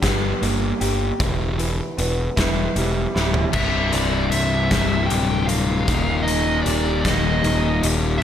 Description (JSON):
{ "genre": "quiet-loud alternative rock", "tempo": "51 BPM (dotted quarters)", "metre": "6/8", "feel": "straight", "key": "unclear", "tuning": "A4 = 440 Hz", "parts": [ { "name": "electric guitar through a small old amp", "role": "arpeggios", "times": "0.0-8.2 s", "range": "C2 to G4", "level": "-26 LUFS", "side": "right 2 dB", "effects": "spring reverb" }, { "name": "fuzz picked electric bass", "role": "bass", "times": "0.0-8.2 s", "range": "C1 to G1", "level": "-23 LUFS", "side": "equal", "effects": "overdrive" }, { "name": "big rock drum kit", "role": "drums", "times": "0.0-8.0 s", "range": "crash cymbal, hi-hat, kick drum, snare drum, toms", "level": "-24 LUFS", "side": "equal", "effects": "none" }, { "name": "dark smooth lead guitar", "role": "melody", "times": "3.5-8.2 s", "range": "D5 to G5", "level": "-24 LUFS", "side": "equal", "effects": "overdrive" }, { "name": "fuzz guitar", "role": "riff", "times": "3.5-8.2 s", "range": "C2 to Eb3", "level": "-23 LUFS", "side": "left 7 dB", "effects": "distortion" } ], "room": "little or no reverb", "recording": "none", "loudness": "-18 LUFS", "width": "side -10 dB against mid", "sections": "0.0-3.5 A section; 3.5-8.2 B section", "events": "drum fill 3.2-3.5", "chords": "0.0 Gm; 1.2 Em; 3.5 C; 5.9 Eb" }